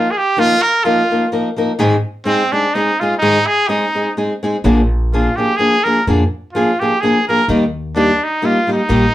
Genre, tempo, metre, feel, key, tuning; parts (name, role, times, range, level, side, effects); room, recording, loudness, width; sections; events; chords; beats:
mexican folk, mariachi; 127 BPM; 3/4; swing 54% on 8ths; Eb major; A4 = 440 Hz
brilliant trumpet; melody; 0.0-9.1 s; C4 to Bb4; -15 LUFS; right 1 dB
nylon-string guitar; accompaniment; 0.0-9.1 s; Ab2 to Bb4; -16 LUFS; left 1 dB
upright bass; bass; 4.6-9.1 s; Bb1 to F2; -18 LUFS; equal
wet studio ambience, RT60 0.5 s; band playing live in one room; -13 LUFS; side -14 dB against mid
0.0-9.1 A section
0.0 Ebsus2; 1.8 Ab; 4.6 Bb7; 7.5 Eb
| 0.39 0.86 1.33 | 1.80 2.27 2.74 | 3.21 3.68 4.16 | 4.64 5.12 5.59 | 6.06 6.53 7.00 | 7.47 7.94 8.42 | 8.89